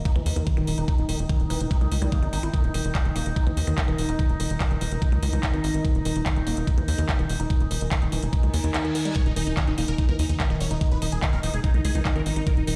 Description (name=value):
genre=psychedelic trance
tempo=145 BPM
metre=4/4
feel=straight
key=Eb major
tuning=A4 = 441 Hz
part: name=overtone-sweeping drone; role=sustained chords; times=0.0-12.8 s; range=Eb4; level=-38 LUFS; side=equal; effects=chorus, built-in reverb, sidechain pumping
part: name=ethereal airy pad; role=texture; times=0.0-12.8 s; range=Eb4 to Bb5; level=-37 LUFS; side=equal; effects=ensemble chorus, built-in reverb, sidechain pumping
part: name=woody wave-folded pluck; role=riff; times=0.1-12.7 s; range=Eb3 to Fb4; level=-35 LUFS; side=equal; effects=chorus, sidechain pumping, dub echo
part: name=drum and bass drum kit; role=drums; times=0.1-12.8 s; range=handclaps, hi-hat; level=-35 LUFS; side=equal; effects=none
part: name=electronic kick drum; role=drums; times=0.1-12.6 s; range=none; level=-26 LUFS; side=equal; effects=none
part: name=tight sequencer bass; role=bass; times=0.2-12.7 s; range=Eb1 to Eb2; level=-28 LUFS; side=equal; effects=none
part: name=reverse cymbal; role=sound effects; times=8.5-9.2 s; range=none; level=-40 LUFS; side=equal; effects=none
part: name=dense compressed supersaw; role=melody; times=9.2-12.7 s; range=Eb4 to Db5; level=-34 LUFS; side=equal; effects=phaser, sidechain pumping, delay
room=little or no reverb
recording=played on a big sound system in a bare room, stone room reverb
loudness=-24 LUFS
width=mono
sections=0.0-12.8 A section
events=reverse cymbal 8.5-9.2; kick drops out 8.7-9.2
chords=0.0 Eb5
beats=0.05 0.47 | 0.88 1.29 1.71 2.12 | 2.54 2.95 3.36 3.78 | 4.19 4.61 5.02 5.43 | 5.85 6.26 6.67 7.09 | 7.50 7.92 8.33 8.74 | 9.16 9.57 9.98 10.40 | 10.81 11.23 11.64 12.05 | 12.47